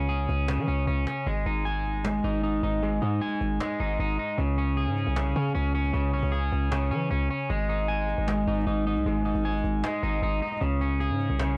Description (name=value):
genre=hip hop, trap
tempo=154 BPM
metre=4/4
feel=half-time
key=unclear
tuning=A4 = 439 Hz
part: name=electric guitar at the edge of break-up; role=accompaniment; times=0.0-11.6 s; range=C#3 to G#5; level=-30 LUFS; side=equal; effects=low-pass filter
part: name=distorted 808-style bass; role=bass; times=0.0-11.6 s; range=G#1 to E3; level=-30 LUFS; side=equal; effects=distortion
part: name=cajon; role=drums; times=0.0-11.5 s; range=none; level=-43 LUFS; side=equal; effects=none
room=small room ambience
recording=worn, warbling old tape, cassette tape, warbly pitch drift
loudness=-27 LUFS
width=mono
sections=0.0-4.4 A section; 4.4-11.6 B section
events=none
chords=0.0 C#5; 1.3 G#5; 4.4 C#5; 7.5 G#5; 10.6 C#5